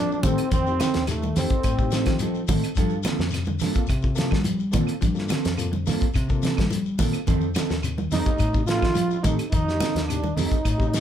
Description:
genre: afrobeat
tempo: 106 BPM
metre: 4/4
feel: straight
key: F mixolydian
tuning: A4 = 441 Hz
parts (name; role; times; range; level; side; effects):
- trombone with bucket mute; melody; 0.0-2.5, 8.1-11.0 s; A3 to F4; -27 LUFS; left 1 dB; none
- breathy trumpet; second line; 0.0-2.5, 8.1-11.0 s; A3 to F4; -32 LUFS; right 6 dB; none
- clean electric guitar; arpeggios; 0.0-10.9 s; C3 to F3; -31 LUFS; left 5 dB; spring reverb
- mellow electric guitar; stabs; 0.0-11.0 s; Bb3 to A4; -30 LUFS; right 8 dB; none
- fingered electric bass; bass; 0.0-11.0 s; Eb2 to G3; -28 LUFS; equal; none
- shekere; percussion; 0.1-11.0 s; none; -35 LUFS; left 4 dB; none
- reed electric piano; accompaniment; 0.2-11.0 s; A3 to A4; -35 LUFS; left 3 dB; medium tremolo
- cloth-damped thuddy drum kit; drums; 0.2-11.0 s; hi-hat, kick drum, snare drum; -25 LUFS; equal; none
- congas; percussion; 0.2-10.8 s; none; -30 LUFS; right 3 dB; none
- claves; percussion; 0.4-10.8 s; none; -42 LUFS; right 8 dB; none
room: light reverb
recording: band playing live in one room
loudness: -21 LUFS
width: side -10 dB against mid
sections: 0.0-11.0 A section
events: none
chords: 0.0 F7; 2.8 Gm11; 7.3 F7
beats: | 0.52 1.08 1.64 2.21 | 2.77 3.33 3.89 4.46 | 5.02 5.58 6.15 6.71 | 7.27 7.84 8.40 8.96 | 9.53 10.09 10.65

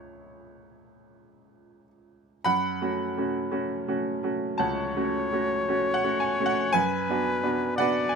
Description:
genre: classical, romantic duo for trumpet and grand piano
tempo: 47-58 BPM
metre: 4/4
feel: rubato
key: F# minor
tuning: A4 = 441 Hz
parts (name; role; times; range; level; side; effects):
- bright baby grand piano; accompaniment; 0.0-8.2 s; C#2 to C#6; -25 LUFS; right 2 dB; none
- bright trumpet; melody; 4.6-8.2 s; B4 to D5; -28 LUFS; left 5 dB; none
room: light reverb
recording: close, detailed microphones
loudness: -24 LUFS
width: side -5 dB against mid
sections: 0.0-2.4 A section; 2.4-8.2 B section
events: none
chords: 0.0 C#; 2.4 F#m; 6.7 Bm/F#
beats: 0.02 1.26 | 2.44 3.51 4.58 5.67 | 6.73 7.78

